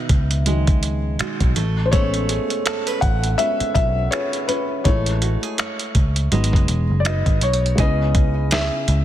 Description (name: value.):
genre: contemporary R&B.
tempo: 82 BPM.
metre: 4/4.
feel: swing 58% on 16ths.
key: C# minor.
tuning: A4 = 440 Hz.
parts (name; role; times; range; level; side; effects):
felt-muted upright piano; accompaniment; 0.0-9.0 s; D#3 to F#5; -24 LUFS; left 3 dB; none.
nylon-string guitar; arpeggios; 0.0-9.0 s; B2 to C#5; -27 LUFS; right 6 dB; digital delay.
vintage muted picked electric bass; bass; 0.1-9.0 s; E1 to C#2; -20 LUFS; equal; none.
dusty soul sampler-style drum kit; drums; 0.1-9.0 s; finger snaps, hi-hat, kick drum, snare drum; -20 LUFS; equal; soft clipping on snare.
clear concert grand piano; melody; 7.0-9.0 s; C#5 to E5; -24 LUFS; left 2 dB; digital delay.
room: light reverb.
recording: dense, heavily limited modern master.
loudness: -17 LUFS.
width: side -12 dB against mid.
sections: 0.0-7.8 A section; 7.8-9.0 B section.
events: felt piano solo 0.0-7.8.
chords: 0.0 Emaj9; 1.6 Amaj9; 4.9 F#m9/A; 6.3 G#m7; 7.8 C#m7.